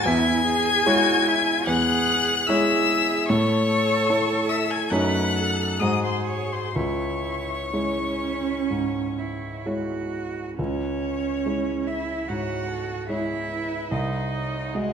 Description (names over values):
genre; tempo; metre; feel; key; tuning
classical, slow romantic movement for piano quartet; 61-76 BPM; 4/4; rubato; C# minor; A4 = 440 Hz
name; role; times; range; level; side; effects
rich violin; melody; 0.0-14.9 s; G#4 to G#6; -27 LUFS; left 6 dB; none
clear cello; second line; 0.0-14.9 s; G#3 to B4; -29 LUFS; right 7 dB; none
rich violin; second line; 0.0-14.9 s; G#4 to G#5; -29 LUFS; left 4 dB; none
warm grand piano; accompaniment; 0.0-14.9 s; B#1 to D#5; -25 LUFS; equal; none
room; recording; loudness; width
moderate scoring stage reverb, RT60 1.7 s; none; -21 LUFS; side -7 dB against mid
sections
0.0-10.6 A section; 10.6-14.9 B section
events
none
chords
0.0 C#m/E; 3.3 A; 4.9 D#m7b5/F#; 5.8 G#7; 6.8 C#m; 13.9 G#7/B#